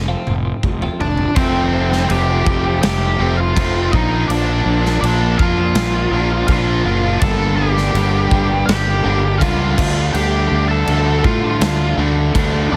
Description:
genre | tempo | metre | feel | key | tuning
quiet-loud alternative rock | 82 BPM | 4/4 | straight | unclear | A4 = 440 Hz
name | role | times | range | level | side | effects
fuzz fingered electric bass | bass | 0.0-12.8 s | F1 to A2 | -21 LUFS | equal | overdrive
twelve-string electric guitar | arpeggios | 0.1-1.1 s | F3 to F4 | -30 LUFS | equal | lush chorus, tape echo
big rock drum kit | drums | 0.3-12.5 s | crash cymbal, kick drum, snare drum, toms | -24 LUFS | equal | none
octave-fuzz lead guitar | melody | 1.0-12.8 s | C4 to A5 | -22 LUFS | equal | distortion
cranked stack guitar | riff | 1.4-12.8 s | F2 to D4 | -24 LUFS | equal | overdrive
fuzz guitar | riff | 1.4-12.8 s | F2 to D4 | -25 LUFS | equal | distortion
room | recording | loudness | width
small room ambience | heavily compressed radio sound | -16 LUFS | mono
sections
0.0-1.4 A section; 1.4-12.8 B section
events
drum fill 0.0-1.4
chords
0.0 F; 3.9 Bb; 7.2 Gm; 9.8 Dsus4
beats
0.63 | 1.37 2.10 2.83 3.56 | 4.29 5.02 5.75 6.48 | 7.21 7.95 8.68 9.41 | 10.14 10.88 11.61 12.35

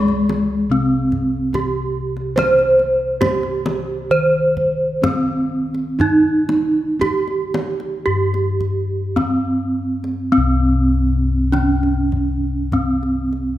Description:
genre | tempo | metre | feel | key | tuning
Javanese gamelan | 50-72 BPM | 4/4 | straight | C pelog | A4 = 440 Hz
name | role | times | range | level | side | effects
gamelan-type bronze metallophone | melody | 0.0-13.6 s | Ab3 to C5 | -18 LUFS | right 1 dB | none
gamelan-type bossed gongs | bass | 0.0-13.6 s | C2 to C5 | -21 LUFS | left 1 dB | none
kendang | percussion | 0.1-13.5 s | none | -26 LUFS | left 1 dB | none
room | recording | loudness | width
moderate scoring stage reverb, RT60 1.9 s | none | -16 LUFS | side -13 dB against mid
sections
0.0-10.3 A section; 10.3-13.6 B section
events
none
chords
none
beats
0.71 1.54 | 2.37 3.22 4.11 5.03 | 5.99 7.00 8.05 9.16 | 10.33 11.53 12.73

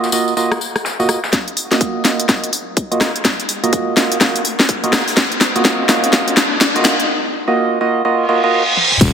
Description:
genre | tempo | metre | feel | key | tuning
bass house | 125 BPM | 4/4 | swing 62% on 16ths | Eb minor | A4 = 440 Hz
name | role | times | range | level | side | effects
percussive organ stab | stabs | 0.0-8.6 s | Bb3 to Eb5 | -18 LUFS | right 2 dB | chorus, sidechain pumping, dub echo
dusty soul sampler-style drum kit | drums | 0.0-1.3, 9.0-9.1 s | hi-hat, shaker, snare drum | -26 LUFS | left 1 dB | high-pass filter on perc, low-pass filter on perc, high-pass filter on snare, low-pass filter on snare, high-pass filter on hats, low-pass filter on hats, high-pass filter on room, low-pass filter on room
tambourine | percussion | 0.0-1.3, 9.0-9.1 s | none | -23 LUFS | left 8 dB | none
house drum kit | drums | 0.5-9.1 s | crash cymbal, hi-hat, rim click, snare drum, toms | -15 LUFS | left 1 dB | none
electronic kick drum | drums | 1.3-9.1 s | none | -18 LUFS | left 1 dB | high-pass filter on kick
riser and reverse cymbal | sound effects | 2.8-9.0 s | none | -21 LUFS | equal | none
wobble bass | bass | 9.0-9.1 s | Eb1 | -13 LUFS | left 1 dB | chorus, sidechain pumping
room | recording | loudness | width
wet plate reverb, RT60 1.8 s, digital ambience | dense, heavily limited modern master, high-pass filter | -13 LUFS | side -7 dB against mid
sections
0.0-1.3 A section; 1.3-9.0 B section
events
build-up 1.3-9.0; drum fill 1.3-7.1, 8.8; filter sweep on synth stab 1.3-9.0; riser 2.8-7.1; reverse cymbal 8.3-9.0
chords
0.0 Ebmadd9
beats
0.37 0.85 | 1.33 1.81 2.29 2.77 | 3.25 3.73 4.21 4.69 | 5.17 5.65 6.13 6.61 | 7.09 7.57 8.05 8.53 | 9.01

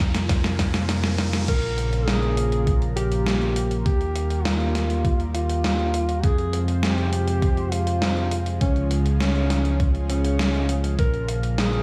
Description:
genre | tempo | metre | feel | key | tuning
synthwave | 101 BPM | 4/4 | straight | Bb dorian | A4 = 440 Hz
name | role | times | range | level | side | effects
chorused pulse-width pad | sustained chords | 0.0-11.8 s | C3 to C5 | -33 LUFS | equal | sidechain pumping
picked electric bass | bass | 0.0-11.8 s | Bb1 to F2 | -26 LUFS | equal | sidechain pumping
electronic kick drum | drums | 0.0-11.1 s | none | -24 LUFS | equal | none
gated 80s digital drum machine | drums | 0.0-11.8 s | crash cymbal, hi-hat, snare drum | -30 LUFS | equal | gated reverb, gated reverb snare
riser | sound effects | 0.0-1.5 s | none | -38 LUFS | equal | none
dark alto saxophone | melody | 1.5-11.8 s | Db4 to Bb4 | -30 LUFS | equal | digital delay
room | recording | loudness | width
light reverb | studio ambience | -23 LUFS | mono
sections
0.0-1.5 A section; 1.5-11.8 B section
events
drum fill 0.0-1.5; riser 0.0-1.5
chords
0.0 Fsus4; 1.5 Bbm; 3.9 Eb; 6.2 Fm; 8.6 Db; 11.0 Bbm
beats
0.29 0.89 | 1.48 2.08 2.67 3.27 | 3.86 4.45 5.05 5.64 | 6.24 6.83 7.42 8.02 | 8.61 9.21 9.80 10.39 | 10.99 11.58

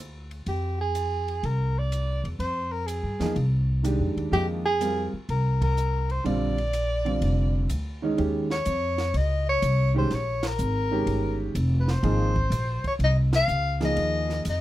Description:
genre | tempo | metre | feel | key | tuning
modal jazz | 124 BPM | 4/4 | swing 68% on 8ths | unclear | A4 = 439 Hz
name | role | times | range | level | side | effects
upright bass | bass | 0.0-14.6 s | F1 to G2 | -26 LUFS | equal | none
compact cocktail drum kit | drums | 0.3-14.6 s | hi-hat, kick drum, ride cymbal, snare drum | -38 LUFS | right 1 dB | none
mellow soprano saxophone | melody | 0.5-14.6 s | G4 to F5 | -28 LUFS | left 1 dB | none
clear concert grand piano | accompaniment | 3.2-14.4 s | D3 to Bb4 | -28 LUFS | right 2 dB | none
room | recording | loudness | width
light reverb | close, detailed microphones | -23 LUFS | side -14 dB against mid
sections
0.0-8.2 A section; 8.2-14.6 B section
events
band accent 5.5, 10.3, 13.2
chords
0.5 Fm11; 6.3 Bbadd9; 8.2 Eb13sus4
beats
| 0.47 0.95 1.43 1.91 | 2.40 2.88 3.36 3.84 | 4.32 4.80 5.29 5.77 | 6.25 6.73 7.21 7.70 | 8.18 8.66 9.14 9.62 | 10.11 10.59 11.07 11.55 | 12.03 12.52 13.00 13.48 | 13.96 14.45

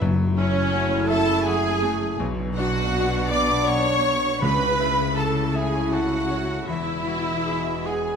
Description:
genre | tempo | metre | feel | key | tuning
cinematic | 81 BPM | 3/4 | uneven beats, rubato | F# minor | A4 = 440 Hz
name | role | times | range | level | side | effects
bright grand piano | accompaniment | 0.0-8.2 s | B1 to A5 | -30 LUFS | left 1 dB | none
dark French horn section | sustained chords | 0.0-8.1 s | G#3 to F#4 | -28 LUFS | equal | none
concert harp | arpeggios | 0.0-8.2 s | F#2 to C#6 | -30 LUFS | left 10 dB | none
rich studio cello section | bass | 0.0-8.2 s | E2 to C#3 | -31 LUFS | right 3 dB | none
rich studio double bass section | bass | 0.0-8.2 s | E1 to C#2 | -31 LUFS | right 3 dB | none
timpani | percussion | 0.0-1.1, 4.4-5.5 s | F#2 to C#3 | -29 LUFS | equal | none
warm studio violin section | melody | 0.4-8.2 s | C#5 to D6 | -33 LUFS | equal | none
mellow cor anglais | second line | 0.4-8.2 s | C#4 to D5 | -30 LUFS | right 5 dB | none
mellow small flute group | second line | 0.4-8.2 s | C#5 to D6 | -31 LUFS | left 4 dB | none
rich studio violin section | second line | 0.4-8.2 s | C#5 to D6 | -35 LUFS | equal | none
rich studio viola section | accompaniment | 0.4-8.2 s | C#4 to D5 | -26 LUFS | right 1 dB | none
room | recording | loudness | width
moderate scoring stage reverb, RT60 1.6 s | none | -20 LUFS | side -6 dB against mid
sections
0.0-8.2 A section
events
none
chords
0.0 F#m7; 2.2 Bmadd9; 4.4 A/C#; 6.7 Eadd9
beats
| 0.01 0.73 1.46 | 2.20 2.94 3.67 | 4.42 5.18 5.93 | 6.68 7.46

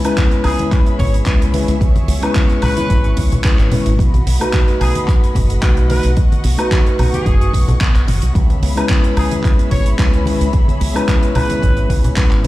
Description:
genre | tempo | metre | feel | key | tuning
nu-disco, nu disco | 110 BPM | 4/4 | swing 53% on 16ths | C# minor | A4 = 440 Hz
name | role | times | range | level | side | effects
mellow tine electric piano | accompaniment | 0.0-12.5 s | G#3 to B4 | -20 LUFS | left 2 dB | vintage 12-bit sampler grit, tape echo
muted studio string section | sustained chords | 0.0-12.5 s | A3 to C#6 | -28 LUFS | left 2 dB | sidechain pumping
wide unison pluck | arpeggios | 0.0-12.5 s | B3 to B4 | -29 LUFS | right 3 dB | none
damped 70s drum kit | drums | 0.0-12.5 s | handclaps, hi-hat, woodblock | -24 LUFS | right 1 dB | none
electronic kick drum | drums | 0.2-12.3 s | none | -14 LUFS | equal | none
congas | percussion | 0.2-12.5 s | none | -23 LUFS | left 1 dB | none
clear trumpet section | melody | 0.4-11.9 s | G#4 to C#5 | -26 LUFS | equal | analog delay
fingered electric bass with an envelope filter | bass | 0.4-12.4 s | F#1 to C#2 | -16 LUFS | equal | none
room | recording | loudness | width
small room ambience | played on a big sound system in a bare room, stone room reverb | -12 LUFS | side -17 dB against mid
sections
0.0-12.5 A section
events
none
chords
0.0 C#m7; 4.0 B7; 8.4 C#m7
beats
0.17 0.72 1.26 | 1.81 2.35 2.90 3.44 | 3.99 4.54 5.08 5.63 | 6.17 6.72 7.26 7.81 | 8.35 8.90 9.45 9.99 | 10.54 11.08 11.63 12.17

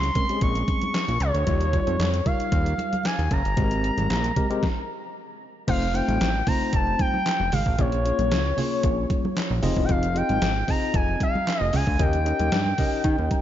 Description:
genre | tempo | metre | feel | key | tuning
early-eighties boogie funk | 114 BPM | 4/4 | straight | unclear | A4 = 440 Hz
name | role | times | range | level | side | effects
expressive portamento lead | melody | 0.0-13.4 s | Db5 to Db6 | -27 LUFS | equal | chorus, analog delay
fat analog bass | bass | 0.0-13.3 s | E1 to Eb3 | -25 LUFS | equal | none
detuned 8-bit digital drum machine | drums | 0.0-13.4 s | crash cymbal, handclaps, hi-hat, kick drum, snare drum | -26 LUFS | equal | overdrive
congas | percussion | 0.0-13.4 s | none | -33 LUFS | right 3 dB | none
tine electric piano | accompaniment | 0.2-13.4 s | G3 to Bb5 | -29 LUFS | left 3 dB | auto-pan
room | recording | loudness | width
moderate plate reverb, RT60 2.6 s | dreamy mix soaked in reverb, nothing above 7.5 kHz | -21 LUFS | side -11 dB against mid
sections
0.0-5.7 A section; 5.7-13.4 B section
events
stop 4.6-5.7; tine electric piano fill 13.0-13.4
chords
0.0 Bbm9; 1.5 Eb9; 3.6 Abmaj9; 5.7 F7; 7.8 Bbm7; 9.6 Fm7; 12.0 Eb7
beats
0.42 0.94 | 1.47 2.00 2.52 3.05 | 3.58 4.10 4.63 5.15 | 5.68 6.21 6.73 7.26 | 7.79 8.31 8.84 9.37 | 9.89 10.42 10.94 11.47 | 12.00 12.52 13.05

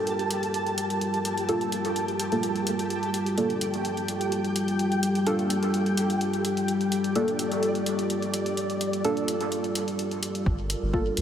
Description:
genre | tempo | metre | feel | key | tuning
dub techno | 127 BPM | 4/4 | straight | G minor | A4 = 439 Hz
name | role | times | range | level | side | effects
dark analog pad | sustained chords | 0.0-11.2 s | G3 to Bb4 | -28 LUFS | left 1 dB | chorus, vintage 12-bit sampler grit, sidechain pumping
flickering grainy texture | texture | 0.0-10.5 s | G4 to A5 | -31 LUFS | right 1 dB | built-in reverb, analog chorus, sidechain pumping
electronic hi-hat | drums | 0.1-11.2 s | none | -35 LUFS | equal | none
deep mellow chord stab | stabs | 1.5-11.2 s | Bb3 to A4 | -30 LUFS | right 1 dB | chorus, phaser, cassette tape, sidechain pumping, dub echo
soft dub sub bass | bass | 10.5-11.2 s | G1 to D2 | -30 LUFS | equal | sidechain pumping
electronic kick drum | drums | 10.5-11.0 s | none | -28 LUFS | equal | none
room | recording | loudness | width
wet huge ambient reverb, RT60 7.6 s | dreamy mix soaked in reverb | -24 LUFS | side -9 dB against mid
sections
0.0-10.5 A section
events
filter sweep on synth stab 0.0-10.5; filter sweep on analog synth pad 0.0-10.5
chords
0.0 Gm7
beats
0.07 0.54 | 1.01 1.49 1.96 2.43 | 2.90 3.38 3.85 4.32 | 4.79 5.27 5.74 6.21 | 6.68 7.16 7.63 8.10 | 8.57 9.05 9.52 9.99 | 10.46 10.94

